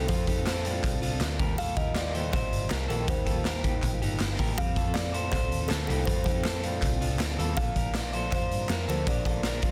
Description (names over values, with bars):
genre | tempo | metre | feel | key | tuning
jangly indie pop | 160 BPM | 4/4 | straight | unclear | A4 = 440 Hz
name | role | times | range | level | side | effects
kalimba | melody | 0.0-9.7 s | A4 to F5 | -37 LUFS | equal | delay
picked steel-string acoustic guitar | accompaniment | 0.0-9.7 s | Bb2 to Bb4 | -40 LUFS | equal | none
electric guitar through a small old amp | arpeggios | 0.0-9.7 s | C4 to D5 | -38 LUFS | equal | none
vintage muted picked electric bass | bass | 0.0-9.7 s | G1 to G2 | -34 LUFS | equal | none
raw garage drum kit | drums | 0.1-9.7 s | hi-hat, kick drum, snare drum | -32 LUFS | equal | none
group handclap | percussion | 0.5-9.5 s | none | -41 LUFS | equal | none
room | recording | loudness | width
little or no reverb | dense, heavily limited modern master | -28 LUFS | mono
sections
0.0-9.7 A section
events
none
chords
0.0 Fadd9; 1.4 Ebadd9; 4.6 Fadd9; 7.6 Bbadd9